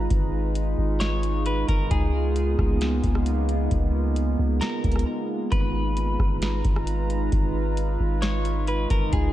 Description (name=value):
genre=hip hop, atmospheric cloud-rap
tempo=133 BPM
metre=4/4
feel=half-time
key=G# dorian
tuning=A4 = 437 Hz
part: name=warbly tape-like pad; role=sustained chords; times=0.0-9.3 s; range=C#3 to A#5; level=-28 LUFS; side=right 2 dB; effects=chorus, built-in reverb, sidechain pumping
part: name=long sustained 808-style bass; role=bass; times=0.0-9.3 s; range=G#1 to C#2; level=-24 LUFS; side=equal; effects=none
part: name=booming analog drum machine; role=drums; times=0.1-9.3 s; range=hi-hat, kick drum, rim click, snare drum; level=-25 LUFS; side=equal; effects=none
part: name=clean electric guitar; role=melody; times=1.0-9.3 s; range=G#4 to C#5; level=-32 LUFS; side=left 1 dB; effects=wide subtle chorus, tape echo
room=light reverb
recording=none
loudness=-22 LUFS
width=side -14 dB against mid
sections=0.0-9.3 A section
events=break 5.1-5.5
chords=0.0 G#m69; 1.9 C#13; 5.5 G#m69